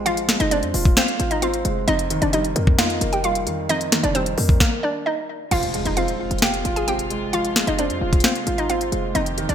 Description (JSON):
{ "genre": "hip hop, trap", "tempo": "132 BPM", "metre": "4/4", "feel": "half-time", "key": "F dorian", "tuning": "A4 = 440 Hz", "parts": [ { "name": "hollow square pluck", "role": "melody", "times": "0.0-9.5 s", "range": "Bb3 to Ab5", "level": "-24 LUFS", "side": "equal", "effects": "chorus, ping-pong delay" }, { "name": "dark grand piano", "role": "accompaniment", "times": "0.0-9.5 s", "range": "F2 to F5", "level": "-26 LUFS", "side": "right 2 dB", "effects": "none" }, { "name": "short 808-style bass", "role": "bass", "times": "0.0-9.5 s", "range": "Eb1 to F2", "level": "-26 LUFS", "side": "equal", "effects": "none" }, { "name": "trap drum kit", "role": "drums", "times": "0.1-9.5 s", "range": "crash cymbal, hi-hat, kick drum, snare drum", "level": "-20 LUFS", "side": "equal", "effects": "gated reverb" }, { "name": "dark studio string section", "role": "sustained chords", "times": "5.5-9.5 s", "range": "C3 to G4", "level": "-31 LUFS", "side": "left 1 dB", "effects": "none" }, { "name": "impact", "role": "sound effects", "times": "5.5-7.3 s", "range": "none", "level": "-32 LUFS", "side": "equal", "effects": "none" } ], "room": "light reverb, digital ambience", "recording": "bright 1980s-style digital production", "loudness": "-18 LUFS", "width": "side -9 dB against mid", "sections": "0.0-5.5 A section; 5.5-9.5 B section", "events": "stop 4.6-5.5; impact 5.5-7.3", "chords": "0.0 Fm; 1.9 Eb/F; 5.5 Fm" }